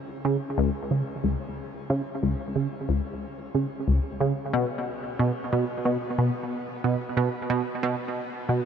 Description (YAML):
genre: ambient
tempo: 91 BPM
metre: 4/4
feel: straight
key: unclear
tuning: A4 = 440 Hz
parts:
  - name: tight sequenced synth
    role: solo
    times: 0.2-8.6 s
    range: C#2 to C#3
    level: -25 LUFS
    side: right 1 dB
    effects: chorus, analog delay
room: wet shimmer reverb, RT60 8.0 s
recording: none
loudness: -25 LUFS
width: side -7 dB against mid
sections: 0.0-8.7 A section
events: none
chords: none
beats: 0.58 1.24 | 1.90 2.56 3.22 3.88 | 4.54 5.19 5.85 6.51 | 7.17 7.83 8.49